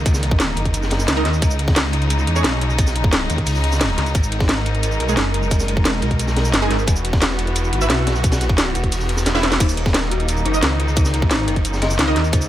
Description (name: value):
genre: dark technical drum and bass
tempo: 176 BPM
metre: 4/4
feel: straight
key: Eb phrygian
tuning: A4 = 442 Hz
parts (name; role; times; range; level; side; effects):
- rich studio string section; sustained chords; 0.0-12.5 s; Db3 to Bb4; -25 LUFS; equal; sidechain pumping
- orchestra-hit-like synth stab; stabs; 0.0-12.2 s; Ab3 to E5; -26 LUFS; right 3 dB; built-in reverb, ping-pong delay
- snarling distorted saw bass; bass; 0.0-12.5 s; E1 to Fb2; -20 LUFS; equal; distortion
- crunchy breakbeat drum kit; drums; 0.1-12.4 s; hi-hat, ride cymbal, snare drum; -29 LUFS; equal; high-pass filter on cymbals, high-pass filter on hats, high-pass filter on snare, high-pass filter on room
- drum and bass drum kit; drums; 0.1-12.5 s; crash cymbal, hi-hat, shaker, snare drum; -22 LUFS; equal; none
- electronic kick drum; drums; 0.1-12.4 s; none; -18 LUFS; equal; none
- dark detuned synth bell; arpeggios; 9.6-12.4 s; Eb4 to Eb5; -27 LUFS; left 4 dB; chorus, sidechain pumping, ping-pong delay
room: digital ambience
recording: none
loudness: -16 LUFS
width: side -13 dB against mid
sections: 0.0-12.5 A section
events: drum fill 9.3-9.6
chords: 0.0 Ebm7; 1.4 Db5; 4.1 Abm; 6.9 Esus2; 9.6 Ebm7